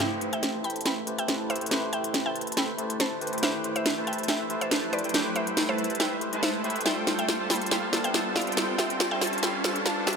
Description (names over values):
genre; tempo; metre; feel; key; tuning
future bass; 140 BPM; 4/4; swing 54% on 16ths, half-time; A minor; A4 = 439 Hz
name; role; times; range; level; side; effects
mallet-like synth pluck; melody; 0.0-10.0 s; B4 to B5; -33 LUFS; equal; chorus, ping-pong delay
tine electric piano; accompaniment; 0.0-10.2 s; G3 to E5; -35 LUFS; left 4 dB; ping-pong delay
concert harp; arpeggios; 0.0-1.9 s; G4 to F5; -46 LUFS; left 8 dB; none
soft supersaw; riff; 0.0-10.2 s; G3 to A5; -31 LUFS; right 2 dB; cassette tape, low-pass filter
fat analog bass; bass; 0.0-10.2 s; G1 to A2; -46 LUFS; right 1 dB; none
trap drum kit; drums; 0.0-10.2 s; hi-hat, snare drum; -28 LUFS; equal; none
riser; sound effects; 0.0-10.2 s; none; -36 LUFS; right 1 dB; none
room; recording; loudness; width
moderate lush hall reverb, RT60 1.9 s, digital ambience; high-pass filter; -25 LUFS; side -5 dB against mid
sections
0.0-10.2 A section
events
build-up 0.0-10.2; drum fill 0.0-10.2; riser 0.0-10.2; filter sweep on supersaw synth 0.0-10.2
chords
0.0 Am7; 6.9 G9sus4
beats
| 0.00 0.43 0.86 1.29 | 1.71 2.14 2.57 3.00 | 3.43 3.86 4.29 4.71 | 5.14 5.57 6.00 6.43 | 6.86 7.29 7.71 8.14 | 8.57 9.00 9.43 9.86